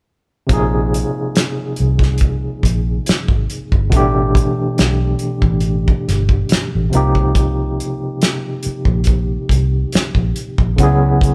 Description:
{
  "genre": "R&B, neo-soul",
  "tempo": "70 BPM",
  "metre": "4/4",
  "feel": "swing 54% on 16ths",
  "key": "unclear",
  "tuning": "A4 = 440 Hz",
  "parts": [
    { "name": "overdriven tine electric piano", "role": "accompaniment", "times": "0.5-11.3 s", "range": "B2 to Ab4", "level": "-21 LUFS", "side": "equal", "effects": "fast tremolo" },
    { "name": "vintage muted fingered electric bass", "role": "bass", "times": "0.5-11.3 s", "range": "G1 to Db2", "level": "-20 LUFS", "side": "equal", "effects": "none" },
    { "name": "cloth-damped thuddy drum kit", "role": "drums", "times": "0.5-11.3 s", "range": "hi-hat, kick drum, snare drum", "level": "-18 LUFS", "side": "equal", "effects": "none" }
  ],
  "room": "light reverb",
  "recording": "band playing live in one room",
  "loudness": "-16 LUFS",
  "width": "mono",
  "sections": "0.5-11.3 A section",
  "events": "none",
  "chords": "0.5 Bbsus2; 3.9 Asus2; 6.9 Cm7; 10.8 Dbm7"
}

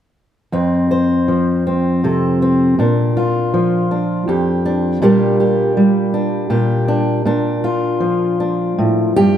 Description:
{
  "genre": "folk, solo fingerstyle acoustic guitar",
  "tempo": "80 BPM",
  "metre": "3/4",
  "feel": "rubato",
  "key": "F major",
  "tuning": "A4 = 443 Hz",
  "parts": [
    { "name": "fingerpicked steel-string acoustic guitar", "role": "solo", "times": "0.5-9.4 s", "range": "F2 to C5", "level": "-13 LUFS", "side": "equal", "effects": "tape echo" }
  ],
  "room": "moderate concert hall reverb, RT60 1.9 s",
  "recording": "none",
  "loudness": "-14 LUFS",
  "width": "side -10 dB against mid",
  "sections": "0.5-9.4 A section",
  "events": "none",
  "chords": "0.5 F; 2.8 Bb; 5.0 Gm/Bb; 7.3 Bb"
}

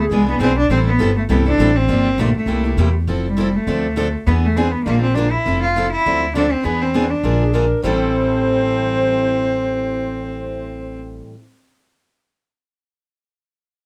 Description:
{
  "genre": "acoustic string swing (jazz manouche)",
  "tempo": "202 BPM",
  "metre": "4/4",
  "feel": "swing 57% on 8ths",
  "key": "A minor",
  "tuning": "A4 = 442 Hz",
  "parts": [
    { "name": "rich cello", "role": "melody", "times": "0.0-11.0 s", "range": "G3 to F4", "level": "-21 LUFS", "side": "equal", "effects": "plate reverb" },
    { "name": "breathy clarinet", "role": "second line", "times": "0.0-0.2, 7.4-11.0 s", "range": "G#4 to C5", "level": "-25 LUFS", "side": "equal", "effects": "none" },
    { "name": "upright bass", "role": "bass", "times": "0.0-11.2 s", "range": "F1 to E2", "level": "-23 LUFS", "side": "equal", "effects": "none" },
    { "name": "picked steel-string acoustic guitar", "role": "accompaniment", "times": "0.1-11.4 s", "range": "A2 to A4", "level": "-26 LUFS", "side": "equal", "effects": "none" },
    { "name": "picked steel-string acoustic guitar", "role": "accompaniment", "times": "0.1-11.4 s", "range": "A2 to B4", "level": "-29 LUFS", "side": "equal", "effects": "none" }
  ],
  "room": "moderate studio ambience, RT60 0.5 s",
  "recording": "none",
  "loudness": "-18 LUFS",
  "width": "mono",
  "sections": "0.0-3.1 A section; 3.1-7.8 B section; 7.8-10.2 C section",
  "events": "none",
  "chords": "0.0 E7; 0.7 Am7; 1.9 Gm7; 2.5 C7; 3.1 Fmaj7; 3.7 Dm7; 4.3 E7; 4.9 Bb7; 5.5 Fmaj7; 6.0 Dm9; 6.6 E7b13; 7.2 Bb7; 7.8 Am7"
}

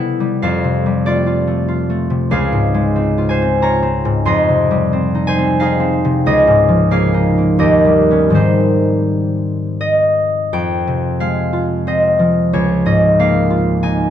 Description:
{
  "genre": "classical, solo harp piece",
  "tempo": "81-95 BPM",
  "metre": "3/4",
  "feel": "rubato",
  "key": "unclear",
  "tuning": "A4 = 440 Hz",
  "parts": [
    { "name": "concert harp", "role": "solo", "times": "0.0-14.1 s", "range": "Db2 to C6", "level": "-12 LUFS", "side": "equal", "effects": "none" }
  ],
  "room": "light reverb",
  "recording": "dark, warm production",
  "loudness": "-12 LUFS",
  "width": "side -10 dB against mid",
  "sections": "0.0-10.5 A section; 10.5-14.1 B section",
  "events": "none",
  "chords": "0.4 F69; 2.3 Dbmaj7; 4.3 Fm9; 6.2 Db69; 7.6 Ebaug7; 8.3 Abmaj7; 10.5 Fmadd9; 12.5 Db69"
}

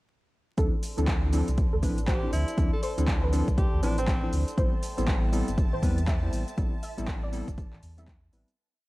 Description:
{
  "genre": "deep house",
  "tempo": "120 BPM",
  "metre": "4/4",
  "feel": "swing 61% on 16ths",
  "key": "A minor",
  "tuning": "A4 = 436 Hz",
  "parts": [
    { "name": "soft round pluck", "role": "melody", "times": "0.6-8.2 s", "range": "A4 to E5", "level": "-37 LUFS", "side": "equal", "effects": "ensemble chorus, analog delay" },
    { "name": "dark analog pad", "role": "sustained chords", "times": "0.6-8.6 s", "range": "A4 to C6", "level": "-42 LUFS", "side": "equal", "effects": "chorus, sidechain pumping" },
    { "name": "warm analog keys", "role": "stabs", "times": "0.6-8.5 s", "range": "F3 to C5", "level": "-33 LUFS", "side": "equal", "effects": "chorus, sidechain pumping" },
    { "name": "sub bass with octave", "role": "bass", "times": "0.6-8.4 s", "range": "G1 to E2", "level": "-29 LUFS", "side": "equal", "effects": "sidechain pumping" },
    { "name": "deep house drum kit", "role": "drums", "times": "0.6-8.6 s", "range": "handclaps, hi-hat, shaker", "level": "-39 LUFS", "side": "equal", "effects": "overdrive" },
    { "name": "electronic kick drum", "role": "drums", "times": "0.6-8.2 s", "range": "none", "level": "-27 LUFS", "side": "equal", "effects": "overdrive" },
    { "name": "bright alto saxophone", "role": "melody", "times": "2.1-4.3 s", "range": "C4 to A4", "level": "-36 LUFS", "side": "equal", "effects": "tape echo" },
    { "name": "string machine, violins", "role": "texture", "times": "4.6-8.6 s", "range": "A5", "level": "-48 LUFS", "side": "left 1 dB", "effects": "ensemble chorus, sidechain pumping" }
  ],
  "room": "digital ambience",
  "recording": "vinyl crackle",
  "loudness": "-24 LUFS",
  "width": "side -19 dB against mid",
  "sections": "0.6-8.6 drop",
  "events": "drop 0.6-8.6; fade-out 5.9-8.6",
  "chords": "0.6 Dm7; 4.6 Am7"
}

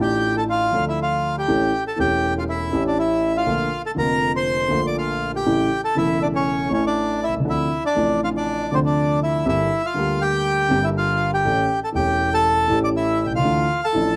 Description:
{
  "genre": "tango",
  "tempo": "120 BPM",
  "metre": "4/4",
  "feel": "rubato",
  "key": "D minor",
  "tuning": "A4 = 440 Hz",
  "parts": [
    { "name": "bandoneon", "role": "melody", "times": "0.0-14.2 s", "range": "C4 to D6", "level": "-23 LUFS", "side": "equal", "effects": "plate reverb" },
    { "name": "dark concert grand piano", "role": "accompaniment", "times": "0.0-14.2 s", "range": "E1 to G4", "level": "-24 LUFS", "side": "equal", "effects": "none" }
  ],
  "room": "moderate club reverb, RT60 0.7 s",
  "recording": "none",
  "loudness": "-21 LUFS",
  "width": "mono",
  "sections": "0.0-14.2 A section",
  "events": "none",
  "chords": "0.0 Dmadd9; 1.5 A7; 3.5 Bbmaj7; 5.5 A; 7.5 Dm7; 9.5 Gm; 11.4 A7; 13.4 Dmadd9"
}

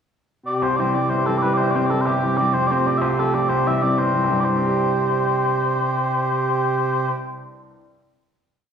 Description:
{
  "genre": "celtic folk",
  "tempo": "125 BPM (dotted quarters)",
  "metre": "6/8",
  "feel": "straight",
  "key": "C major",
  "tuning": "A4 = 439 Hz",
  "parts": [
    { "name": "mellow small bagpipes", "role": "melody", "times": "0.5-7.1 s", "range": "C3 to E5", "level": "-19 LUFS", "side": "equal", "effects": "none" },
    { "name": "bright upright piano", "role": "accompaniment", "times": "0.6-7.9 s", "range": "G1 to G4", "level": "-25 LUFS", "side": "left 1 dB", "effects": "none" }
  ],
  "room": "wet large studio reverb, RT60 1.2 s",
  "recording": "band playing live in one room",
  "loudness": "-18 LUFS",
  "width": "side -7 dB against mid",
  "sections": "0.0-0.6 pickup bar; 0.6-4.5 A section; 4.5-6.4 final chord",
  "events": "none",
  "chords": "0.0 N.C.; 0.6 C; 2.5 F; 3.5 C"
}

